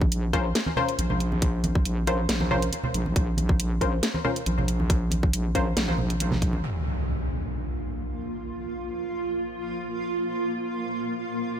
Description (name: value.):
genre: deep dubstep.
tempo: 138 BPM.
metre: 4/4.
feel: swing 53% on 16ths, half-time.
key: Bb minor.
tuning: A4 = 440 Hz.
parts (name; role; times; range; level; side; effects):
wobble bass; bass; 0.0-6.6 s; Bb1; -26 LUFS; equal; chorus.
electronic kick drum; drums; 0.0-6.5 s; none; -24 LUFS; equal; none.
garage drum kit; drums; 0.1-6.5 s; hi-hat, snare drum; -30 LUFS; equal; none.
filtered dub chord stab; stabs; 0.3-5.7 s; Db4 to C5; -30 LUFS; left 2 dB; chorus, dub echo.
congas; percussion; 0.3-6.6 s; none; -32 LUFS; right 2 dB; none.
granular cloud pad; sustained chords; 7.4-11.6 s; Bb3 to F4; -29 LUFS; right 2 dB; built-in reverb.
impact; sound effects; 6.6-8.4 s; none; -31 LUFS; equal; none.
room: little or no reverb.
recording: none.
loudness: -24 LUFS.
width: side -9 dB against mid.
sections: 0.0-6.6 A section; 6.6-11.6 B section.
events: impact 6.6-8.4.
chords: 0.0 Bbmadd9; 6.6 Bb5.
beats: 0.12 0.55 0.99 | 1.42 1.86 2.29 2.73 | 3.16 3.60 4.03 4.46 | 4.90 5.33 5.77 6.20 | 6.64 7.07 7.51 7.94 | 8.38 8.81 9.25 9.68 | 10.12 10.55 10.99 11.42.